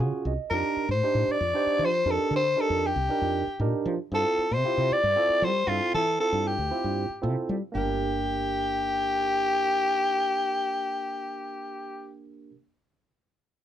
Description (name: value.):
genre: electric jazz fusion.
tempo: 232 BPM (eighths).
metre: 7/8.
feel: straight.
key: G minor.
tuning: A4 = 440 Hz.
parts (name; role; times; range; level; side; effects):
barky tine electric piano; accompaniment; 0.0-12.5 s; Bb3 to Ab5; -32 LUFS; right 5 dB; none.
woody fretless electric bass; bass; 0.0-12.5 s; G1 to G3; -30 LUFS; equal; none.
growling soprano saxophone; melody; 0.5-12.1 s; F4 to D5; -25 LUFS; left 2 dB; none.
room: light reverb.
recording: band playing live in one room.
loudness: -24 LUFS.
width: side -10 dB against mid.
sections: 0.0-7.8 A section; 7.8-11.4 B section.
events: tine electric piano fill 0.0-0.5.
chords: 0.0 Ab7sus4; 0.5 F13sus4; 4.1 G13sus4; 7.8 Gm.